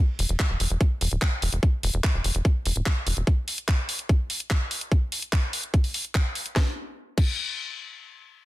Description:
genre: psychedelic trance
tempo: 146 BPM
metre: 4/4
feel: straight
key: unclear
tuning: A4 = 440 Hz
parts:
  - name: tight sequencer bass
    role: bass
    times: 0.2-3.2 s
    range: D1 to E1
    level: -25 LUFS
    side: equal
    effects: none
  - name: garage drum kit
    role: drums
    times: 0.2-7.3 s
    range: crash cymbal, handclaps, hi-hat, snare drum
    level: -29 LUFS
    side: equal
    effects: studio ambience
  - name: electronic kick drum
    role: drums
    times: 0.4-7.3 s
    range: none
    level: -21 LUFS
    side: equal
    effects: studio ambience
room: digital ambience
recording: dense, heavily limited modern master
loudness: -23 LUFS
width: side -17 dB against mid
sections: 0.0-6.6 A section; 6.6-8.4 B section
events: none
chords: none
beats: 0.40 0.81 1.22 | 1.63 2.04 2.45 2.86 | 3.27 3.68 4.09 4.50 | 4.92 5.33 5.74 6.15 | 6.56 6.97

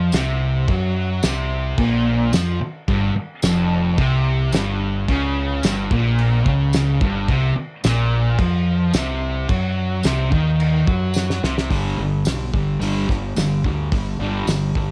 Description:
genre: garage rock duo or trio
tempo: 109 BPM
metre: 4/4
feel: straight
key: G major from 11.7 s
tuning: A4 = 440 Hz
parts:
  - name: fuzz guitar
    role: riff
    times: 0.0-14.9 s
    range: F2 to G3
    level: -22 LUFS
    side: equal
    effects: distortion, cassette tape
  - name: growling fingered electric bass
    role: bass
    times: 0.0-14.9 s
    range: F1 to F#2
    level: -26 LUFS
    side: equal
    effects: overdrive
  - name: cloth-damped thuddy drum kit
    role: drums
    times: 0.1-14.9 s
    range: crash cymbal, hi-hat, kick drum, snare drum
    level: -26 LUFS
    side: equal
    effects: cassette tape
  - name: tambourine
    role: percussion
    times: 0.1-14.6 s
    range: none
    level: -33 LUFS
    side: equal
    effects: none
room: little or no reverb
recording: home recording on cassette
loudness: -20 LUFS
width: mono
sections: 0.0-11.7 A section; 11.7-14.9 B section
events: drum fill 11.1-11.7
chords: 0.0 F#maj7#11; 2.9 Bbm69/F; 7.3 Ebm69/Bb; 11.7 G5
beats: 0.14 | 0.69 1.23 1.78 2.33 | 2.88 3.43 3.98 4.53 | 5.08 5.64 6.19 6.74 | 7.29 7.84 8.39 8.94 | 9.49 10.04 10.60 11.15 | 11.70 12.25 12.81 13.36 | 13.91 14.47

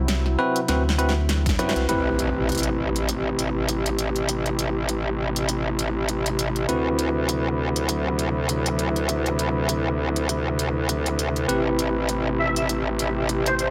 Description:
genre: glitch hop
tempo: 100 BPM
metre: 4/4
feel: swing 57% on 16ths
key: A dorian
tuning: A4 = 439 Hz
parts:
  - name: warm analog pad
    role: sustained chords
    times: 0.0-13.7 s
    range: C3 to B4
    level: -31 LUFS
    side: equal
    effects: chorus, vintage 12-bit sampler grit, sidechain pumping
  - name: rubbery square bass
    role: bass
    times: 0.0-1.9 s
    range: C2 to D2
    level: -25 LUFS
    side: equal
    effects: none
  - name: pop drum kit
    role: drums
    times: 0.1-13.7 s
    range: hi-hat, snare drum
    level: -30 LUFS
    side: equal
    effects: none
  - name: bell-like tine electric piano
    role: stabs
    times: 0.4-13.7 s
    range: C4 to B4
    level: -30 LUFS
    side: equal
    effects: sidechain pumping, low-pass filter, digital delay
  - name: electronic kick drum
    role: drums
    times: 1.5-1.6 s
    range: none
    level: -26 LUFS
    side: equal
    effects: none
  - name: growl bass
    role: bass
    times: 1.6-13.7 s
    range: A1 to F#2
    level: -27 LUFS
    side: equal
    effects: chorus
  - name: impact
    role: sound effects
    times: 1.9-4.3 s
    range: none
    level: -34 LUFS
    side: equal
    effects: none
  - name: sync lead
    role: melody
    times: 12.4-13.7 s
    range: C5 to E5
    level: -28 LUFS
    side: equal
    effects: ensemble chorus, digital delay
room: light reverb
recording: none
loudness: -24 LUFS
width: mono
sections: 0.0-1.9 A section; 1.9-13.7 B section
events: drum fill 0.7-1.9; band accent 1.7-2.0; impact 1.9-4.3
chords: 0.0 D13; 1.9 Am9; 6.7 D13; 11.5 Am9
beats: 0.09 0.69 1.29 | 1.89 2.49 3.09 3.69 | 4.29 4.89 5.49 6.09 | 6.69 7.29 7.89 8.49 | 9.09 9.69 10.29 10.89 | 11.49 12.09 12.69 13.29

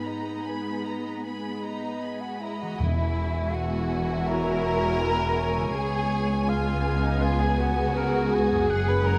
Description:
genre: cinematic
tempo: 73-84 BPM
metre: 4/4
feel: rubato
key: E lydian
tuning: A4 = 439 Hz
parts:
  - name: muted symphonic violin section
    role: melody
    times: 0.0-9.2 s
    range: G#5 to B5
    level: -40 LUFS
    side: equal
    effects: none
  - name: muted symphonic violin section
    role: second line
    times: 0.0-9.2 s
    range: D#4 to B5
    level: -35 LUFS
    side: equal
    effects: none
  - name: warm clarinet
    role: second line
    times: 0.0-2.0 s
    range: D#4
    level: -37 LUFS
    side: equal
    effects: none
  - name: muted symphonic viola section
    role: accompaniment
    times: 0.0-9.2 s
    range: G#3 to G#4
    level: -34 LUFS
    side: equal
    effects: none
  - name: concert harp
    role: arpeggios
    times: 0.0-9.2 s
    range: F#2 to C#5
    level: -39 LUFS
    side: equal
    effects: none
  - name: muted symphonic cello section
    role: bass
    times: 0.0-9.2 s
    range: C#2 to B3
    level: -33 LUFS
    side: equal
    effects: none
  - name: mellow hollow silver concert flute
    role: second line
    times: 1.6-9.2 s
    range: D#5 to B5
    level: -36 LUFS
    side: equal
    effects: none
  - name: mellow French horn section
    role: sustained chords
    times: 2.8-9.2 s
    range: G#3 to G#4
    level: -35 LUFS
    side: equal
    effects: none
  - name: muted symphonic double bass section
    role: bass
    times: 2.8-9.2 s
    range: E1 to C#2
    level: -32 LUFS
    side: equal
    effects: none
  - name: timpani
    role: percussion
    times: 2.8-3.9 s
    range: E2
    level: -32 LUFS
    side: equal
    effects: none
  - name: warm cor anglais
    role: second line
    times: 4.3-9.2 s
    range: A#4 to G#5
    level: -36 LUFS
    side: equal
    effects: none
room: light reverb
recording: none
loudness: -26 LUFS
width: mono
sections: 0.0-2.8 A section; 2.8-9.2 A section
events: none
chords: 0.0 G#madd9; 2.8 Eadd9; 5.8 C#7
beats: 0.44 1.24 2.02 | 2.80 3.54 4.29 5.03 | 5.77 6.49 7.23 7.97 | 8.70

